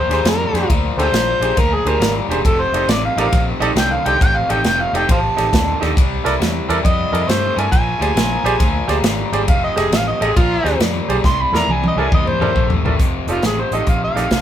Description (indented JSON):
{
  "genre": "electric blues shuffle",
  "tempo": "137 BPM",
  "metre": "4/4",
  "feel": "swing 66% on 8ths",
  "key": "F mixolydian",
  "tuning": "A4 = 442 Hz",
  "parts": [
    { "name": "overdriven harmonica", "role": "melody", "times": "0.0-14.4 s", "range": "F4 to C6", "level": "-19 LUFS", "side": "equal", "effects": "none" },
    { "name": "overdriven semi-hollow guitar", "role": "riff", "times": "0.0-14.4 s", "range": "F2 to A3", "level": "-23 LUFS", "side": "left 3 dB", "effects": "none" },
    { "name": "clear concert grand piano", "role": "accompaniment", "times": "0.1-14.2 s", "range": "D4 to Eb5", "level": "-22 LUFS", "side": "right 4 dB", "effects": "none" },
    { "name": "vintage muted fingered electric bass", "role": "bass", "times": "0.1-14.4 s", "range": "E1 to G2", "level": "-22 LUFS", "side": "equal", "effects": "none" },
    { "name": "natural country drum kit", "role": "drums", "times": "0.1-14.4 s", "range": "hi-hat, kick drum, ride cymbal, snare drum, toms", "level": "-18 LUFS", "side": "equal", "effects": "none" }
  ],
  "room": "light reverb",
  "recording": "band playing live in one room",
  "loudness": "-14 LUFS",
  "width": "side -10 dB against mid",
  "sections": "0.0-13.0 A section; 13.0-14.4 B section",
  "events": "harmonica solo 0.0-13.0; drum fill 11.2-13.0",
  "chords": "0.0 Bb13; 2.4 F13; 6.0 C13; 7.7 Bb13; 9.5 F13; 10.4 Bb13; 11.2 C13; 13.0 F13",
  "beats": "0.25 | 0.69 1.13 1.57 2.01 | 2.45 2.89 3.33 3.77 | 4.21 4.64 5.08 5.52 | 5.96 6.40 6.84 7.28 | 7.72 8.16 8.60 9.04 | 9.48 9.91 10.35 10.79 | 11.23 11.67 12.11 12.55 | 12.99 13.43 13.87 14.31"
}